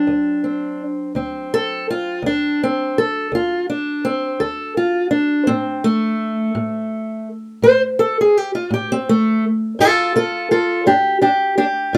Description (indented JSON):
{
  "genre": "acoustic country blues, solo or duo",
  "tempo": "56 BPM (dotted quarters)",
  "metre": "12/8",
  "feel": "straight",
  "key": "D mixolydian",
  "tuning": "A4 = 440 Hz",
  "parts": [
    { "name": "fingerpicked steel-string acoustic guitar", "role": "solo", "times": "0.0-12.0 s", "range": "D2 to C5", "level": "-18 LUFS", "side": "equal", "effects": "none" }
  ],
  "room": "light reverb",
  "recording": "rough home demo mix",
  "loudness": "-18 LUFS",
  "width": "mono",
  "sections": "0.0-12.0 A section",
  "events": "steel-string acoustic guitar solo 0.0-12.0",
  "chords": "0.0 D7; 5.5 N.C.; 9.8 G5"
}